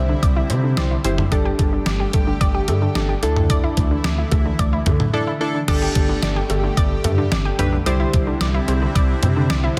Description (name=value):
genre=synth-pop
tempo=110 BPM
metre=4/4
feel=straight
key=unclear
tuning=A4 = 440 Hz
part: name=lush unison pad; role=sustained chords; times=0.0-9.8 s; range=D3 to G4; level=-29 LUFS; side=equal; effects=chorus, phaser
part: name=analog pluck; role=arpeggios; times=0.0-9.8 s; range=D3 to D5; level=-29 LUFS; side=equal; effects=chorus, digital delay
part: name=smooth gliding synth bass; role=bass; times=0.0-9.8 s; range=F#1 to D3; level=-24 LUFS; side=equal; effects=none
part: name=detuned 8-bit digital drum machine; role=drums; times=0.2-9.8 s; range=cowbell, crash cymbal, hi-hat, kick drum, snare drum, toms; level=-23 LUFS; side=equal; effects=none
part: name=warm analog keys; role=accompaniment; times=0.8-9.8 s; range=D4 to C5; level=-27 LUFS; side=equal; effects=chorus
room=light reverb, digital ambience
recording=dense, heavily limited modern master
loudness=-19 LUFS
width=mono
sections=0.0-5.7 A section; 5.7-9.8 B section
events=none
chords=0.0 Cadd9; 1.3 Gsus2; 3.2 Dsus2; 5.7 Gsus2; 7.9 Cadd9